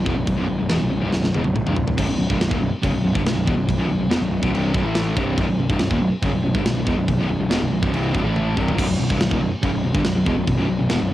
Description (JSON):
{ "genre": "heavy metal", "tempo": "141 BPM", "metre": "4/4", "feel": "straight", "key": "unclear", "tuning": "A4 = 441 Hz", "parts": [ { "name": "distorted electric guitar", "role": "riff", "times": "0.0-11.1 s", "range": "B1 to A3", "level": "-24 LUFS", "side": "left 4 dB", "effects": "distortion, cassette tape" }, { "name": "sludgy distorted guitar", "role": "riff", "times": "0.0-11.1 s", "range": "B1 to A3", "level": "-26 LUFS", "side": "right 5 dB", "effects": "overdrive, cassette tape" }, { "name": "fuzz picked electric bass", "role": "bass", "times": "0.0-11.1 s", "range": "B0 to A1", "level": "-24 LUFS", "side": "equal", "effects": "overdrive" }, { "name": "tight metal drum kit", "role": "drums", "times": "0.1-11.0 s", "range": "crash cymbal, kick drum, snare drum, toms", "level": "-24 LUFS", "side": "equal", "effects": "none" }, { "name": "distorted electric guitar", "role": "riff", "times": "2.0-11.1 s", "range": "B1 to A3", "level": "-26 LUFS", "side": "equal", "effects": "distortion, cassette tape" } ], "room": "light reverb", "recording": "home recording on cassette", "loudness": "-18 LUFS", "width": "side -14 dB against mid", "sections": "0.0-8.8 A section; 8.8-11.1 B section", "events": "drum fill 1.1-2.0, 8.4-8.8", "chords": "0.0 B5; 8.8 B", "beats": "| 0.28 0.70 1.13 1.55 | 1.98 2.41 2.83 3.26 | 3.68 4.11 4.53 4.96 | 5.38 5.81 6.23 6.66 | 7.08 7.50 7.93 8.35 | 8.78 9.20 9.62 10.04 | 10.47 10.89" }